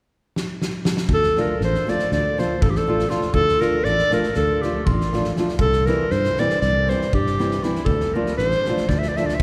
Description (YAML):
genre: balkan folk, Balkan wedding band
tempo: 239 BPM (eighths)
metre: 9/8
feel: straight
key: D minor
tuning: A4 = 440 Hz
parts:
  - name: loose indie drum kit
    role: percussion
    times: 0.4-9.4 s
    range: kick drum, snare drum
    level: -28 LUFS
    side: equal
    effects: none
  - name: clear clarinet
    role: melody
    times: 1.1-9.4 s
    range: E4 to E5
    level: -23 LUFS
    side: equal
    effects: none
  - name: fingered electric bass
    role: bass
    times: 1.1-9.4 s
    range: A1 to G2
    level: -27 LUFS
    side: equal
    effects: none
  - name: nylon-string guitar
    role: accompaniment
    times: 1.4-9.3 s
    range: E3 to F4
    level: -28 LUFS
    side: equal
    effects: none
room: wet cathedral reverb, RT60 5.0 s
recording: recorded in a church or concert hall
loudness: -21 LUFS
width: mono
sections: 0.0-1.1 A section; 1.1-9.4 B section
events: drum fill 0.3-1.1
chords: 0.0 N.C.; 1.1 Dm; 5.6 C; 7.9 Dm